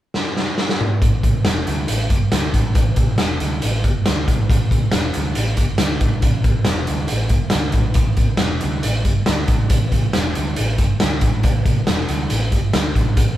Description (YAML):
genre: garage rock duo or trio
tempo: 138 BPM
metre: 4/4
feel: straight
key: unclear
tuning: A4 = 439 Hz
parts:
  - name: raw garage drum kit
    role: drums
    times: 0.1-13.3 s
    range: hi-hat, kick drum, snare drum, toms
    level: -17 LUFS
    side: equal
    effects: none
  - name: hollow-body short-scale picked electric bass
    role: bass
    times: 1.0-13.3 s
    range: E1 to D2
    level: -21 LUFS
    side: equal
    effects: none
room: light reverb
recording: band playing live in one room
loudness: -16 LUFS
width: side -13 dB against mid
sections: 0.0-1.0 A section; 1.0-13.4 B section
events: drum fill 0.2-1.0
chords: none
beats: 0.15 0.59 | 1.02 1.46 1.89 2.33 | 2.76 3.20 3.63 4.07 | 4.50 4.93 5.37 5.80 | 6.24 6.67 7.11 7.54 | 7.98 8.41 8.84 9.28 | 9.71 10.15 10.58 11.01 | 11.45 11.88 12.31 12.75 | 13.18